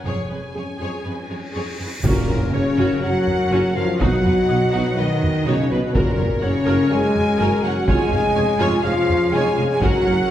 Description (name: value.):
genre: cinematic, epic orchestral film score.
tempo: 124 BPM.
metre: 4/4.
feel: straight.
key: F# major.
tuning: A4 = 440 Hz.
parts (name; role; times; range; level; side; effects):
dark French horn section; sustained chords; 0.0-10.3 s; G#3 to G#4; -23 LUFS; left 3 dB; none.
warm symphonic double bass section; bass; 0.0-10.1 s; E#1 to B1; -27 LUFS; right 2 dB; none.
cymbal swell and impact; sound effects; 1.2-4.0 s; none; -32 LUFS; equal; none.
rich symphonic violin section; melody; 0.1-10.3 s; A#4 to G#5; -33 LUFS; left 3 dB; none.
warm symphonic violin section; second line; 0.1-10.3 s; A#4 to G#5; -30 LUFS; left 1 dB; none.
warm symphonic viola section; accompaniment; 0.1-10.1 s; C#4 to G#5; -27 LUFS; right 1 dB; none.
rich symphonic cello section; bass; 0.1-10.3 s; E#2 to G#3; -26 LUFS; right 2 dB; none.
hollow concert flute; second line; 2.0-10.3 s; A#4 to G#5; -29 LUFS; equal; none.
warm trombone section; sustained chords; 2.0-10.3 s; A#2 to G#3; -28 LUFS; right 2 dB; none.
dark tuba; bass; 2.0-10.2 s; E#1 to B1; -27 LUFS; right 2 dB; none.
taiko ensemble; drums; 2.0-10.3 s; none; -24 LUFS; equal; none.
timpani; percussion; 2.0-2.7, 5.9-6.6 s; F#2; -28 LUFS; equal; none.
dark woodwind section; sustained chords; 2.1-10.3 s; B3 to D#5; -30 LUFS; equal; none.
room: wet recital hall reverb, RT60 1.5 s.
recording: heard from further back in the room.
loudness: -17 LUFS.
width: side -11 dB against mid.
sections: 0.0-2.0 A section; 2.0-10.3 B section.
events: cymbal swell 1.2-2.0; impact 2.0-4.0.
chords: 0.1 C#/E#; 2.0 F#; 4.0 B; 5.9 F#; 7.9 C#/E#.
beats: | 0.06 0.56 1.05 1.55 | 2.04 2.53 3.03 3.52 | 4.00 4.49 4.98 5.46 | 5.95 6.43 6.92 7.40 | 7.88 8.36 8.85 9.33 | 9.82 10.30.